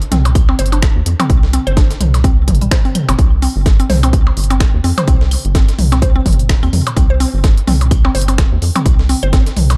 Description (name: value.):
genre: minimal techno.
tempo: 127 BPM.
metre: 4/4.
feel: swing 57% on 16ths.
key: C minor.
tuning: A4 = 438 Hz.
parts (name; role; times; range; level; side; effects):
rubbery square bass; bass; 0.0-9.8 s; G1 to F2; -17 LUFS; equal; sidechain pumping.
techno drum kit; drums; 0.0-9.8 s; finger snaps, hi-hat; -27 LUFS; equal; none.
mallet-like synth pluck; riff; 0.1-9.4 s; G3 to C5; -24 LUFS; equal; chorus, sidechain pumping, digital delay.
breakbeat sampler-style drum kit; drums; 0.1-9.8 s; hi-hat, snare drum; -32 LUFS; equal; high-pass filter on snare, sidechain pumping on hats, high-pass filter on hats, high-pass filter on room.
electronic toms, percussion blips and claves; percussion; 0.1-9.8 s; none; -22 LUFS; equal; tape echo.
electronic kick drum; drums; 0.4-9.4 s; none; -15 LUFS; equal; none.
room: digital ambience.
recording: dark, warm production.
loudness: -13 LUFS.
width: mono.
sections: 0.0-9.8 A section.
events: none.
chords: 0.0 C5.